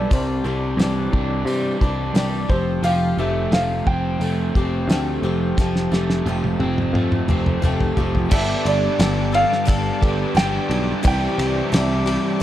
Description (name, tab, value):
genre	folk rock and heartland rock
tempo	88 BPM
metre	4/4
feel	straight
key	G mixolydian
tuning	A4 = 439 Hz
part	dark baby grand piano	melody	0.0-12.4 s	C5 to G5	-25 LUFS	right 1 dB	none
part	picked swing-style acoustic guitar	accompaniment	0.0-12.4 s	C3 to A4	-27 LUFS	left 4 dB	none
part	crunchy overdriven guitar	riff	0.0-12.4 s	G2 to G4	-24 LUFS	right 1 dB	none
part	picked electric bass	bass	0.0-12.2 s	F1 to C3	-23 LUFS	equal	none
part	cloth-damped thuddy drum kit	drums	0.1-12.2 s	crash cymbal, hi-hat, kick drum, ride cymbal, snare drum, toms	-22 LUFS	equal	none
part	dark upright piano	accompaniment	8.3-12.1 s	E4 to D5	-34 LUFS	right 8 dB	none
part	bright tonewheel organ	sustained chords	8.3-12.4 s	B4 to D6	-34 LUFS	left 1 dB	overdrive, chorus vibrato, fast rotary speaker
room	light reverb, studio reverb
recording	dark, warm production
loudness	-18 LUFS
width	side -12 dB against mid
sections	0.0-8.3 A section; 8.3-12.4 B section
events	drum fill 5.6-8.3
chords	0.1 Cadd9; 2.5 Fadd9; 8.3 Gadd9; 11.1 Cadd9